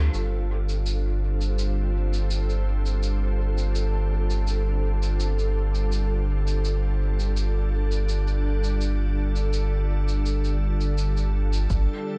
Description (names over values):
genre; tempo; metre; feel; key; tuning
ambient dub; 83 BPM; 4/4; straight; unclear; A4 = 441 Hz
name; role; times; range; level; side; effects
soft additive organ-like pad; sustained chords; 0.0-12.2 s; D3 to A4; -34 LUFS; equal; ensemble chorus, built-in reverb
soft dub sub bass; bass; 0.0-11.9 s; G1; -26 LUFS; equal; none
bubbling stepped-filter texture; texture; 0.0-11.7 s; A4; -41 LUFS; equal; chorus, built-in reverb
cabasa; drums; 0.1-11.9 s; none; -41 LUFS; equal; dub echo
electronic kick drum; drums; 11.7-11.9 s; none; -30 LUFS; equal; overdrive
room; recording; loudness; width
digital ambience; dark, warm production, nothing above 10.8 kHz; -25 LUFS; mono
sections
0.1-11.7 A section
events
none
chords
0.1 G9sus4